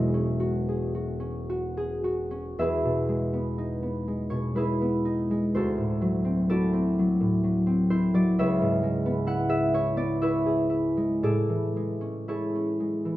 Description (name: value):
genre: classical, solo harp piece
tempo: 62 BPM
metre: 3/4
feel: uneven beats, rubato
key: E mixolydian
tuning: A4 = 440 Hz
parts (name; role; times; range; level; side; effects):
- concert harp; solo; 0.0-13.2 s; E1 to F#5; -24 LUFS; equal; none
room: moderate stone room reverb, RT60 1.0 s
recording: heard from further back in the room, nothing above 10.5 kHz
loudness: -24 LUFS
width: side -15 dB against mid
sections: 0.0-2.6 A section; 2.6-13.2 B section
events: none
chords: 0.0 E69; 2.6 Emaj7; 5.5 D9; 8.4 C#m7; 11.2 Amaj7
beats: 0.42 1.51 | 2.58 3.59 4.57 | 5.54 6.51 7.46 | 8.38 9.28 10.23 | 11.24 12.29